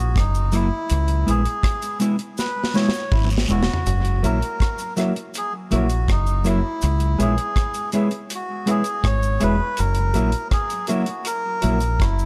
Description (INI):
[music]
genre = roots reggae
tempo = 81 BPM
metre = 4/4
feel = straight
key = C# dorian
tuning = A4 = 438 Hz
[part]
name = melodica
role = melody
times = 0.0-12.3 s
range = D#4 to C#5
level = -28 LUFS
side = equal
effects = tape echo
[part]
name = deep dub fingered electric bass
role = bass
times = 0.0-12.3 s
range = E1 to C#2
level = -23 LUFS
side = equal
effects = none
[part]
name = deep reggae drum kit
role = drums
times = 0.2-12.2 s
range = hi-hat, kick drum, rim click, snare drum, toms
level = -26 LUFS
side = equal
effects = dub echo
[part]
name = cabasa and guiro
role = percussion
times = 0.3-12.3 s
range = none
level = -38 LUFS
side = equal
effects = none
[part]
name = mellow electric guitar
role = accompaniment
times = 0.5-11.8 s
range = F#3 to E4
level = -27 LUFS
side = equal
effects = tape echo
[part]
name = dark baby grand piano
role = stabs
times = 4.2-11.8 s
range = F#4 to E5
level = -33 LUFS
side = equal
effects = none
[sound]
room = light reverb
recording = none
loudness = -21 LUFS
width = mono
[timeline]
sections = 0.0-12.3 A section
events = drum fill 2.4-3.9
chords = 0.0 F#7; 0.9 C#m7; 3.9 F#7; 6.8 C#m7; 9.8 F#7